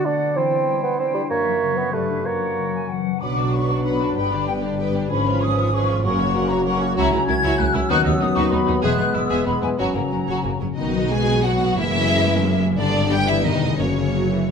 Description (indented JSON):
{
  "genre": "classical, dramatic, fast romantic movement for symphony orchestra",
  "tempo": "174-195 BPM",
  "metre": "3/4",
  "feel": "straight",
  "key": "B major from 7.0 s",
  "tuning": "A4 = 441 Hz",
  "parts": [
    { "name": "warm clarinet", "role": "second line", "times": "0.0-10.6 s", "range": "A#3 to G4", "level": "-31 LUFS", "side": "left 1 dB", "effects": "none" },
    { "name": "mellow bassoon", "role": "accompaniment", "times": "0.0-10.6 s", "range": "E#3 to D4", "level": "-25 LUFS", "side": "right 4 dB", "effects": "none" },
    { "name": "concert harp", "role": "arpeggios", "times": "0.0-14.5 s", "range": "E2 to E5", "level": "-26 LUFS", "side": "left 10 dB", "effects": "none" },
    { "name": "bright flute section", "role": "second line", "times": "0.1-10.6 s", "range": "D5 to G#6", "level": "-26 LUFS", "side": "left 3 dB", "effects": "none" },
    { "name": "warm oboe", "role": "second line", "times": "0.1-3.1 s", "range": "B4 to D5", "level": "-30 LUFS", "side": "right 3 dB", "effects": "none" },
    { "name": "rich symphonic violin section", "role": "melody", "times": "3.2-14.5 s", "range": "D#4 to G#5", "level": "-28 LUFS", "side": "left 2 dB", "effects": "none" },
    { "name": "rich symphonic violin section", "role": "second line", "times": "3.2-14.5 s", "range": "A#3 to C#5", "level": "-30 LUFS", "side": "left 1 dB", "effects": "none" },
    { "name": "rich symphonic viola section", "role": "accompaniment", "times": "3.2-14.5 s", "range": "E3 to F#4", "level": "-28 LUFS", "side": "right 2 dB", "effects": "none" },
    { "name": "warm French horn section", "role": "sustained chords", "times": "3.2-14.5 s", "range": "C#3 to D4", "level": "-27 LUFS", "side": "left 3 dB", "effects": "none" },
    { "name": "clear symphonic double bass section", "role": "bass", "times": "3.2-14.5 s", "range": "E1 to D#2", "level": "-26 LUFS", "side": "right 3 dB", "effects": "none" },
    { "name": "rich symphonic cello section", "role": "bass", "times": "3.2-14.5 s", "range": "C#2 to B2", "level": "-26 LUFS", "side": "right 4 dB", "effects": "none" }
  ],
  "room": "moderate scoring stage reverb, RT60 1.7 s",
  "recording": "close, detailed microphones",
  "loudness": "-18 LUFS",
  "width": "side -6 dB against mid",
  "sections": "0.0-3.2 A section; 3.2-10.8 B section; 10.8-14.5 C section",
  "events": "none",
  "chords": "0.4 C/E; 1.3 F#7; 1.9 G; 2.3 F#; 3.2 Bm; 4.2 G; 5.1 C#7/G#; 6.0 F#; 7.0 F#7/C#; 7.9 B/D#; 8.8 E; 9.8 F#; 10.8 B; 11.8 F#9; 12.8 G; 13.4 C#m7b5/E; 13.8 F#"
}